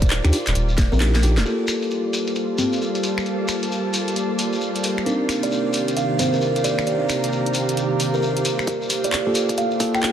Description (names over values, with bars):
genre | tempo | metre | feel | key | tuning
UK garage, two-step garage | 133 BPM | 4/4 | swing 63% on 16ths | G minor | A4 = 436 Hz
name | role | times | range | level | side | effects
soft string machine | sustained chords | 0.0-10.1 s | C3 to D5 | -27 LUFS | equal | ensemble chorus, sidechain pumping
soft dub sub bass | bass | 0.0-1.4, 8.7-10.1 s | Eb1 to G2 | -19 LUFS | equal | high-pass filter
electronic kick drum | drums | 0.0-0.9, 8.7-9.9 s | none | -20 LUFS | equal | high-pass filter on kick, high-pass filter on room
garage drum kit | drums | 0.0-10.1 s | congas, finger snaps, handclaps, hi-hat, snare drum | -26 LUFS | left 1 dB | low-pass filter on hats, soft clipping on snare, low-pass filter on snare, low-pass filter on perc, low-pass filter on room
shekere | percussion | 0.0-10.1 s | none | -30 LUFS | left 2 dB | none
bell-like tine electric piano | stabs | 0.2-10.1 s | Bb3 to Bb4 | -26 LUFS | left 1 dB | low-pass filter, tape echo
buzzing kalimba | melody | 0.9-1.1, 5.4-10.1 s | Bb4 to G5 | -26 LUFS | right 3 dB | low-pass filter, tape echo
airy breathy pad | texture | 2.1-10.1 s | G4 to Bb5 | -27 LUFS | right 2 dB | chorus, sidechain pumping
room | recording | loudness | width
moderate lush hall reverb, RT60 2.0 s | dense, heavily limited modern master | -19 LUFS | side -9 dB against mid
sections
0.0-1.5 A section; 1.5-8.7 B section; 8.7-10.1 C section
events
drum fill 0.8-1.5; kick drops out 1.0-1.5; filter sweep on drum 1.5-8.7; build-up 8.7-10.1; filter sweep on tine electric piano 8.7-10.1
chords
0.0 Ebmaj9; 1.5 Gm9; 5.1 Cm9; 8.4 Gm9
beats
0.10 0.55 1.00 | 1.46 1.91 2.36 2.81 | 3.26 3.71 4.16 4.61 | 5.07 5.52 5.97 6.42 | 6.87 7.32 7.77 8.22 | 8.67 9.12 9.58 10.03